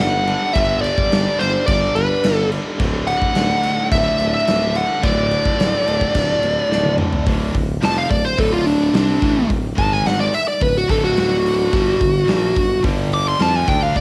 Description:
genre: hard rock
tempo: 107 BPM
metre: 4/4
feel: straight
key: unclear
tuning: A4 = 437 Hz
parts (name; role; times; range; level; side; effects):
- bluesy overdriven lead guitar; melody; 0.0-14.0 s; D4 to D6; -21 LUFS; equal; distortion
- heavy high-gain guitar; riff; 0.0-14.0 s; D2 to F4; -32 LUFS; equal; distortion, cassette tape
- overdriven electric guitar; riff; 0.0-14.0 s; D2 to F4; -29 LUFS; equal; cassette tape
- tight distorted guitar; riff; 0.0-14.0 s; D2 to F4; -32 LUFS; equal; none
- mellow tuba; bass; 0.0-14.0 s; D1 to F2; -25 LUFS; equal; none
- huge arena drum kit; drums; 0.0-14.0 s; crash cymbal, hi-hat, kick drum, snare drum, toms; -24 LUFS; equal; cassette tape
room: light reverb, small room ambience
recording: home recording on cassette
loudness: -18 LUFS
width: mono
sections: 0.0-7.3 A section; 7.3-14.0 B section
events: drum fill 6.7-7.3; lead electric guitar solo 7.3-14.0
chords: 0.0 G5; 2.8 D; 7.3 D5; 9.8 G#5; 10.3 D; 11.7 G5

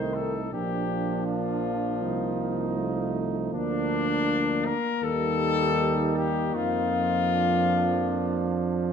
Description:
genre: classical, brass quintet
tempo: 76-81 BPM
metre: 4/4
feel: rubato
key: Bb major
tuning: A4 = 444 Hz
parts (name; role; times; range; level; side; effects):
- mellow trumpet; melody; 0.0-8.9 s; D4 to C5; -28 LUFS; left 7 dB; none
- mellow flugelhorn; second line; 0.0-8.9 s; D4 to Eb4; -33 LUFS; right 7 dB; none
- clear trombone; accompaniment; 0.0-8.9 s; Eb3 to G3; -32 LUFS; right 4 dB; none
- mellow French horn; accompaniment; 0.0-8.6 s; A3 to Bb3; -32 LUFS; left 5 dB; none
- warm tuba; bass; 0.0-8.9 s; Bb1 to F2; -30 LUFS; right 4 dB; none
room: wet recital hall reverb, RT60 1.3 s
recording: dark, warm production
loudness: -24 LUFS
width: side -7 dB against mid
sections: 0.0-8.9 A section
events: none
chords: 0.0 Adim/C; 0.5 Bb; 2.0 F7/C; 3.5 Bb/D; 5.0 Eb; 6.6 Bb/F

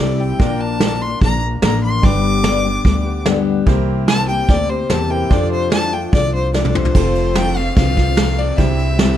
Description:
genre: honky-tonk and classic country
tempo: 147 BPM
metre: 4/4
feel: straight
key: F major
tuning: A4 = 441 Hz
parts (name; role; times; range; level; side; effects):
- clear fiddle; melody; 0.0-9.2 s; C5 to D6; -21 LUFS; left 2 dB; none
- bright concert grand piano; accompaniment; 0.0-9.2 s; C4 to D5; -27 LUFS; right 6 dB; none
- picked steel-string acoustic guitar; accompaniment; 0.0-9.2 s; F2 to Bb4; -21 LUFS; left 6 dB; none
- upright bass; bass; 0.0-9.2 s; F1 to F2; -20 LUFS; right 1 dB; none
- soft brush drum kit; drums; 0.4-9.1 s; crash cymbal, hi-hat, kick drum, ride cymbal, snare drum, toms; -17 LUFS; right 1 dB; none
room: little or no reverb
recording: dark, warm production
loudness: -14 LUFS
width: side -11 dB against mid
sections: 0.0-6.9 A section; 6.9-9.2 B section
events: fiddle solo 0.0-6.9; drum fill 6.5-6.9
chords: 0.4 Bb; 2.0 G; 3.7 C7; 5.3 F6; 6.9 F; 8.6 C

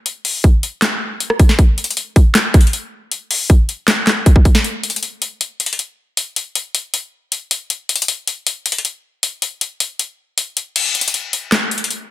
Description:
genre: hip hop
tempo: 157 BPM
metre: 4/4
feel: half-time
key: none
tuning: none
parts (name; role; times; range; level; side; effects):
- trap drum kit; drums; 0.1-12.0 s; crash cymbal, handclaps, hi-hat, kick drum, rim click, snare drum; -13 LUFS; equal; overdrive
room: little or no reverb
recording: dense, heavily limited modern master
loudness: -14 LUFS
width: side -15 dB against mid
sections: 0.0-4.6 A section; 4.6-10.8 B section; 10.8-12.1 C section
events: drum fill 4.3-4.6; kick muted 10.8-12.1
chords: none

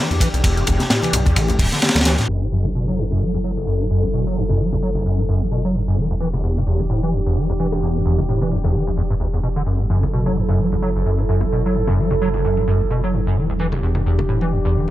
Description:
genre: breakbeat, breaks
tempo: 130 BPM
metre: 4/4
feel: swing 57% on 16ths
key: F# phrygian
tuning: A4 = 441 Hz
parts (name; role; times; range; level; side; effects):
- warbly tape-like pad; sustained chords; 0.0-14.9 s; E3 to A4; -24 LUFS; right 1 dB; chorus, built-in reverb, sidechain pumping
- overdriven acid bass; riff; 0.0-14.9 s; E1 to G3; -20 LUFS; equal; distortion, ensemble chorus, cassette tape
- dark detuned saw bass; bass; 0.1-14.9 s; D1 to E2; -23 LUFS; equal; none
- electronic hi-hat; drums; 0.1-2.3 s; none; -27 LUFS; left 1 dB; none
- crunchy breakbeat drum kit; drums; 0.2-2.3 s; hi-hat, kick drum, ride cymbal, snare drum; -18 LUFS; equal; none
- bongos and congas; percussion; 0.2-14.9 s; none; -28 LUFS; left 2 dB; none
room: small room ambience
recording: low-pass filter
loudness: -17 LUFS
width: side -14 dB against mid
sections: 0.0-2.3 A section; 2.3-14.9 B section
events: filter sweep on acid bass 2.3-14.9; filter sweep 2.3-14.9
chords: 0.0 Em7; 2.3 F#m7; 6.0 Em7; 9.7 F#m7; 13.4 Em7

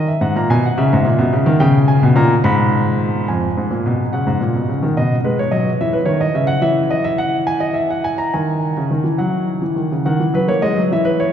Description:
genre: classical, baroque-style two-part invention for grand piano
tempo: 71 BPM (dotted quarters)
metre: 6/8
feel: straight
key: G# minor, B major from 6.6 s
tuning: A4 = 440 Hz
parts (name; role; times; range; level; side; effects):
- warm concert grand piano; solo; 0.0-11.3 s; F2 to B5; -14 LUFS; equal; none
room: wet cathedral reverb, RT60 5.8 s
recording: recorded in a church or concert hall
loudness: -14 LUFS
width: side -9 dB against mid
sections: 0.0-3.3 A section; 3.3-10.1 B section; 10.1-11.3 C section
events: none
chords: 0.0 G#m; 0.8 A#dim; 1.6 A#m7; 2.4 G#m; 3.3 Fdim; 4.1 F#; 5.0 B; 5.8 E5; 6.6 Esus2; 7.5 Emaj9#11; 8.3 C#madd9; 9.2 F#5; 10.1 B/D#

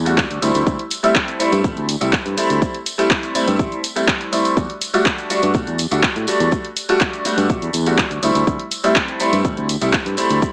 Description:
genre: filtered disco house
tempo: 123 BPM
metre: 4/4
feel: straight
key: unclear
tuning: A4 = 440 Hz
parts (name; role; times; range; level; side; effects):
- modern bright fingered electric bass; bass; 0.0-10.4 s; A1 to A2; -20 LUFS; equal; sidechain pumping
- bright baby grand piano; accompaniment; 0.1-10.5 s; G3 to F#4; -18 LUFS; equal; phaser, sidechain pumping
- house drum kit; drums; 0.1-10.5 s; handclaps, hi-hat, shaker; -20 LUFS; equal; sidechain pumping on hats, small room reverb, sidechain pumping on perc
- tambourine; percussion; 0.1-10.5 s; none; -32 LUFS; equal; sidechain pumping on perc
- electronic kick drum; drums; 0.2-10.5 s; none; -20 LUFS; equal; small room reverb
room: light reverb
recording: small speaker sound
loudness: -15 LUFS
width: side -36 dB against mid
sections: 0.0-10.5 A section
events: none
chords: 0.4 D9sus4; 4.6 Em11; 8.2 D9sus4

